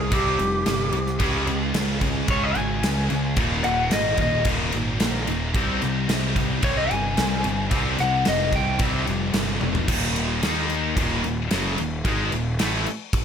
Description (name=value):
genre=hard rock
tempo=111 BPM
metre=4/4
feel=straight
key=Eb mixolydian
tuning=A4 = 438 Hz
part: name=lightly driven lead guitar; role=melody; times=0.0-8.8 s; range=G4 to Ab5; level=-25 LUFS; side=left 1 dB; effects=none
part: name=crunchy overdriven guitar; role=riff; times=0.0-12.9 s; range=Eb2 to Eb4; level=-29 LUFS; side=left 11 dB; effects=none
part: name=distorted electric guitar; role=riff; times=0.0-12.9 s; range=Eb2 to Eb4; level=-31 LUFS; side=right 12 dB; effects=distortion
part: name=fuzz picked electric bass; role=bass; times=0.0-12.8 s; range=Eb1 to Eb2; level=-27 LUFS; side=equal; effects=overdrive
part: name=gated 80s drum kit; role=drums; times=0.1-13.2 s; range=crash cymbal, kick drum, snare drum, toms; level=-26 LUFS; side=equal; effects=none
part: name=high-gain distorted guitar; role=riff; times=1.2-12.9 s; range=Eb2 to Ab4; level=-29 LUFS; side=equal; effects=distortion
room=light reverb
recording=none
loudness=-20 LUFS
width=side -8 dB against mid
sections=0.0-9.9 A section; 9.9-13.2 B section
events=lead electric guitar solo 0.0-9.9; drum fill 9.6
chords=0.0 C5; 1.2 Db; 3.4 Eb; 5.6 Cm; 9.9 Eb5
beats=0.13 0.67 | 1.22 1.76 2.30 2.84 | 3.39 3.93 4.47 5.01 | 5.56 6.10 6.64 7.18 | 7.72 8.26 8.80 9.35 | 9.89 10.43 10.97 11.51 | 12.05 12.59 13.13